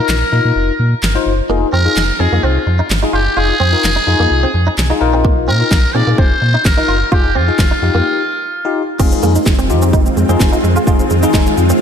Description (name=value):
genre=dance-pop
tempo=128 BPM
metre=4/4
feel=straight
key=F minor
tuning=A4 = 445 Hz
part: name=trumpet with metal mute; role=melody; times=0.0-8.8 s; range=F4 to D5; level=-18 LUFS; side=equal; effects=analog delay
part: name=bell-like tine electric piano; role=accompaniment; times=0.0-11.6 s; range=Eb4 to C5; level=-19 LUFS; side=left 6 dB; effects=wide subtle chorus, sidechain pumping
part: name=sub bass with octave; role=bass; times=0.1-11.7 s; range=F1 to Bb2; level=-15 LUFS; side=equal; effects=sidechain pumping
part: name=pop drum kit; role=drums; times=0.1-11.8 s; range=crash cymbal, handclaps, kick drum, shaker, snare drum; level=-16 LUFS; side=equal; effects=none
part: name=direct-recorded clean electric guitar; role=riff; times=1.5-11.8 s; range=Bb3 to F4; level=-22 LUFS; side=right 4 dB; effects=ensemble chorus
part: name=string machine, violas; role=sustained chords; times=9.0-11.8 s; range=Eb3 to F4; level=-17 LUFS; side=left 1 dB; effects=ensemble chorus, sidechain pumping
part: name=soft round pluck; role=arpeggios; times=9.0-11.5 s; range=Ab3 to Ab4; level=-21 LUFS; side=right 6 dB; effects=chorus, sidechain pumping, analog delay
room=moderate lush hall reverb, RT60 1.8 s, digital ambience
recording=dreamy mix soaked in reverb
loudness=-11 LUFS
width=side -8 dB against mid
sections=0.0-9.0 A section; 9.0-11.8 B section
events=break 8.1-9.0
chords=0.0 Bbsus4; 1.5 Fm7; 5.0 Bbsus4; 7.1 Fm7